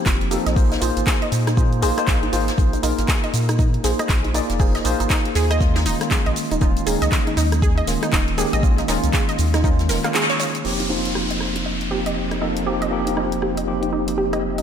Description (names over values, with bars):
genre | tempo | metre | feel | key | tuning
deep house | 119 BPM | 4/4 | swing 60% on 16ths | unclear | A4 = 441 Hz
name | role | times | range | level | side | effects
analog pluck | arpeggios | 0.0-14.6 s | Eb4 to F5 | -26 LUFS | right 2 dB | chorus, sidechain pumping, ping-pong delay
tine electric piano | stabs | 0.0-14.6 s | Eb3 to D5 | -23 LUFS | equal | overdrive, fast stereo tremolo, sidechain pumping, analog delay
round analog bass | bass | 0.1-14.6 s | Eb1 to Bb2 | -23 LUFS | equal | none
deep house drum kit | drums | 0.1-14.6 s | crash cymbal, handclaps, hi-hat, rim click, shaker | -26 LUFS | equal | none
electronic kick drum | drums | 0.1-9.8 s | none | -19 LUFS | equal | none
jazz brush drum kit | drums | 0.1-10.3 s | hi-hat, snare drum | -34 LUFS | left 2 dB | sidechain pumping on hats, high-pass filter on hats, high-pass filter on snare, high-pass filter on room
downlifter | sound effects | 10.6-14.6 s | none | -29 LUFS | equal | none
room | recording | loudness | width
moderate lush hall reverb, RT60 1.6 s | dreamy mix soaked in reverb | -17 LUFS | side -8 dB against mid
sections
0.0-10.6 A section; 10.6-14.6 B section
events
filter sweep on synth arpeggio sound 0.0-10.6, 10.6-14.6; band accent 10.1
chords
0.0 F9sus4; 0.6 Bb9sus4; 5.6 Eb9sus4; 10.6 F9sus4